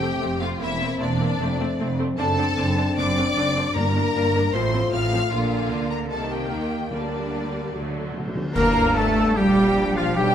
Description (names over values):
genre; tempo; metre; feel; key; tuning
classical, dramatic, fast romantic movement for symphony orchestra; 152 BPM; 4/4; straight; G minor; A4 = 440 Hz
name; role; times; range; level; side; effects
rich symphonic violin section; melody; 0.0-10.3 s; D5 to F6; -30 LUFS; left 3 dB; none
warm symphonic violin section; second line; 0.0-10.3 s; D4 to Bb5; -28 LUFS; left 3 dB; none
clear symphonic viola section; accompaniment; 0.0-10.3 s; D3 to Bb4; -29 LUFS; right 2 dB; none
dark French horn section; sustained chords; 0.0-10.3 s; F3 to G4; -28 LUFS; left 4 dB; none
clear chamber double bass section; bass; 0.0-10.3 s; E1 to Eb2; -29 LUFS; right 3 dB; none
rich symphonic cello section; bass; 0.0-10.3 s; E2 to Bb3; -27 LUFS; right 2 dB; none
timpani; percussion; 3.8-4.3, 6.9-9.1 s; G2 to D3; -32 LUFS; left 1 dB; none
cymbal swell, clash cymbals and concert bass drum; percussion; 5.3-9.3 s; none; -32 LUFS; equal; none
clear oboe; second line; 8.6-10.3 s; F4 to Bb4; -29 LUFS; right 1 dB; none
dark clarinet; second line; 8.6-10.3 s; Bb3 to D4; -30 LUFS; left 3 dB; none
silver concert flute; second line; 8.6-10.3 s; F5 to Bb5; -29 LUFS; equal; none
dark trumpet section; stabs; 8.6-10.3 s; F4 to Bb4; -26 LUFS; right 1 dB; none
clear tuba; bass; 8.6-10.3 s; G1 to B1; -30 LUFS; right 4 dB; none
room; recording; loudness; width
moderate scoring stage reverb, RT60 1.8 s; none; -20 LUFS; side -9 dB against mid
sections
0.0-8.6 A section; 8.6-10.3 B section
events
timpani fill 7.7-8.6; band accent 8.6-9.0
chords
0.0 F; 0.6 C7/E; 1.4 F; 2.2 D7/F#; 3.8 Gm; 4.5 F/A; 5.3 Bb; 6.1 Cm7; 6.9 Gm/D; 7.7 D; 8.6 Gm; 9.4 Gm/Bb